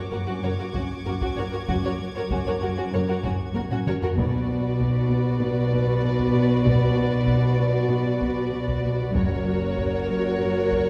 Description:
cinematic, suspense film score; 96 BPM; 4/4; straight; B harmonic minor; A4 = 439 Hz
warm studio violin section; melody; 0.0-10.9 s; F#4 to D5; -34 LUFS; equal
dark studio violin section; second line; 0.0-10.9 s; C#4 to B4; -33 LUFS; equal
rich symphonic viola section; accompaniment; 0.0-10.9 s; F#4; -34 LUFS; equal
dark studio cello section; bass; 0.0-10.9 s; F#2 to B2; -29 LUFS; equal
clear studio violin section; texture; 0.0-3.8 s; C#6 to G#6; -43 LUFS; equal
warm studio cello section; riff; 0.1-10.9 s; F#2 to B3; -31 LUFS; equal
rich studio double bass section; bass; 0.1-10.9 s; F#1 to B1; -31 LUFS; equal
taiko ensemble; drums; 0.7-10.9 s; -33 LUFS; equal
timpani; percussion; 4.2-5.1 s; B2; -34 LUFS; equal
wet scoring stage reverb, RT60 1.7 s; heard from further back in the room; -24 LUFS; mono
0.0-10.9 A section
drum fill 3.6-4.2
0.0 F#; 4.2 Bm; 9.1 F#

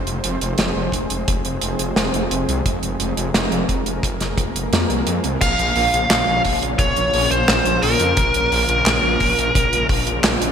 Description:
synthwave; 87 BPM; 4/4; straight; Bb minor; A4 = 444 Hz
lush unison pad; sustained chords; 0.0-10.5 s; Db3 to C5; -26 LUFS; equal; chorus, sidechain pumping
wide detuned saw bass; bass; 0.0-10.5 s; F1 to F2; -23 LUFS; equal; chorus, tube saturation
modern studio drum kit; drums; 0.1-10.5 s; crash cymbal, handclaps, hi-hat, snare drum; -22 LUFS; right 2 dB; gated reverb
kick drum; drums; 0.9-10.0 s; -24 LUFS; equal
swell; sound effects; 4.3-5.4 s; -28 LUFS; left 2 dB
dark smooth lead guitar; melody; 5.4-9.9 s; Bb4 to F5; -18 LUFS; equal; overdrive, ping-pong delay
airy dreamy lead; second line; 5.4-9.9 s; Bb4 to F5; -27 LUFS; equal; chorus, ping-pong delay
moderate lush hall reverb, RT60 2.3 s; bright 1980s-style digital production; -16 LUFS; side -8 dB against mid
0.0-5.4 A section; 5.4-10.5 B section
swell 4.3-5.4
0.0 Fm; 5.4 Bbm

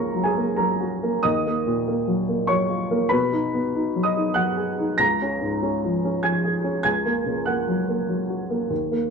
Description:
neoclassical minimalist piano; 96 BPM; 3/4; rubato; F# major; A4 = 441 Hz
dark upright piano; solo; 0.0-9.1 s; C#2 to A#6; -21 LUFS; equal
wet small room reverb, RT60 0.6 s; band playing live in one room; -21 LUFS; side -5 dB against mid
0.0-9.1 A section
0.0 F#/C#; 1.2 D#madd9; 3.1 B6; 5.0 C#6; 6.8 F#/C#

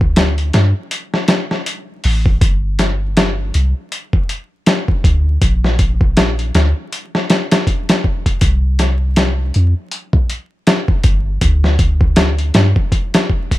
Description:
trip hop; 80 BPM; 4/4; swing 58% on 16ths; A4 = 438 Hz
soft 808-style bass; bass; 0.0-12.7 s; G1 to G2; -14 LUFS; equal
dusty soul sampler-style drum kit; drums; 0.0-13.6 s; hi-hat, kick drum, snare drum; -14 LUFS; equal; overdrive
little or no reverb; vinyl crackle; -13 LUFS; side -16 dB against mid
0.0-13.6 A section

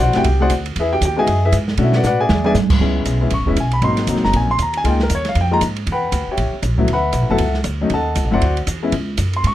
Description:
jazz, small-group swing and bop; 235 BPM; 4/4; swing 60% on 8ths; A4 = 440 Hz
warm grand piano; accompaniment; 0.0-9.5 s; F#3 to C#6; -18 LUFS; left 2 dB
upright bass; bass; 0.0-9.5 s; E1 to B2; -19 LUFS; equal
open jazz drum kit; drums; 0.1-9.5 s; crash cymbal, hi-hat, kick drum, ride cymbal, snare drum, toms; -23 LUFS; right 2 dB
little or no reverb; close, detailed microphones; -15 LUFS; side -13 dB against mid
0.0-2.8 A section; 2.8-9.5 A section
drum fill 2.0-2.5
0.0 D9; 0.8 Emaj9; 1.8 Bm7; 2.3 E7; 2.8 Amaj9 (rootless); 3.8 G#9; 4.8 C#69; 5.9 Em9; 6.4 A7b9; 6.9 D69; 7.9 D#m7b5; 8.4 D9; 8.9 C#5

